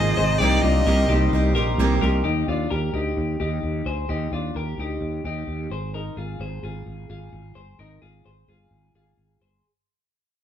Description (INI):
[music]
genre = indie pop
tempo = 130 BPM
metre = 4/4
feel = straight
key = unclear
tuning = A4 = 440 Hz
[part]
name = warm violin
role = melody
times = 0.0-1.3 s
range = D5 to Eb5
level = -24 LUFS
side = left 1 dB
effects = none
[part]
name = picked steel-string acoustic guitar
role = accompaniment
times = 0.0-2.3 s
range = C3 to C5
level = -26 LUFS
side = right 6 dB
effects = none
[part]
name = lush unison pad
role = sustained chords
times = 0.0-2.2 s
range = C3 to Eb4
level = -33 LUFS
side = equal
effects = none
[part]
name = twelve-string electric guitar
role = arpeggios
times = 0.0-9.6 s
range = D4 to C5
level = -27 LUFS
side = left 4 dB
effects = none
[part]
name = sustaining fretless electric bass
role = bass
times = 0.0-9.6 s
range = G1 to Eb2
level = -24 LUFS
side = equal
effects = none
[sound]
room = light reverb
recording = band playing live in one room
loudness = -21 LUFS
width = side -10 dB against mid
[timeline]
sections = 0.0-2.2 A section; 2.2-9.6 B section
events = fade-out 2.2-9.6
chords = 0.4 Cm7; 2.2 Ebadd9; 5.7 Ab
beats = | 0.41 0.87 1.33 1.79 | 2.25 2.71 3.17 3.63 | 4.09 4.55 5.01 5.48 | 5.94 6.40 6.86 7.33 | 7.79 8.25 8.71 9.18